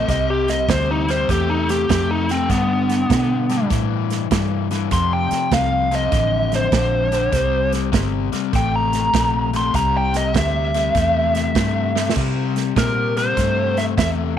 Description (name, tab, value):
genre	electric blues shuffle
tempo	99 BPM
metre	4/4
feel	swing 66% on 8ths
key	C mixolydian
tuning	A4 = 442 Hz
part	biting lead guitar	melody	0.0-14.1 s	B3 to C6	-20 LUFS	right 1 dB	overdrive
part	overdriven electric guitar	riff	0.0-14.3 s	F2 to A3	-23 LUFS	left 14 dB	none
part	vintage muted fingered electric bass	bass	0.0-14.4 s	G1 to C3	-22 LUFS	right 1 dB	none
part	natural country drum kit	drums	0.1-14.2 s	crash cymbal, hi-hat, kick drum, snare drum	-23 LUFS	right 5 dB	none
room	moderate spring reverb, RT60 1.9 s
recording	1960s-style stereo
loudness	-16 LUFS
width	side -9 dB against mid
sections	0.0-12.2 A section; 12.2-14.4 B section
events	lead electric guitar solo 0.0-12.2; drum fill 11.9-12.2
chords	0.0 C; 2.5 G; 4.9 F7; 7.3 C7